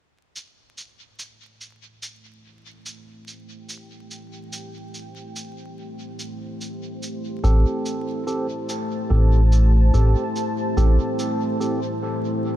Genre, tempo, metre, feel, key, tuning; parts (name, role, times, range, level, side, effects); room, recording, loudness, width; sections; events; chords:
ambient dub; 72 BPM; 4/4; swing 56% on 16ths; A minor; A4 = 440 Hz
deep dark ambient pad; sustained chords; 2.2-12.6 s; A3 to A5; -28 LUFS; equal; chorus, built-in reverb
shaker; drums; 0.4-11.8 s; -38 LUFS; right 1 dB; dub echo
tine electric piano; stabs; 7.4-11.8 s; C4 to A4; -28 LUFS; right 2 dB; dub echo
round analog bass; bass; 7.4-11.0 s; A1; -15 LUFS; equal
little or no reverb; vinyl crackle; -18 LUFS; side -13 dB against mid
0.4-12.6 A section
fade-in on ambient pad 0.4-12.6
0.4 Am7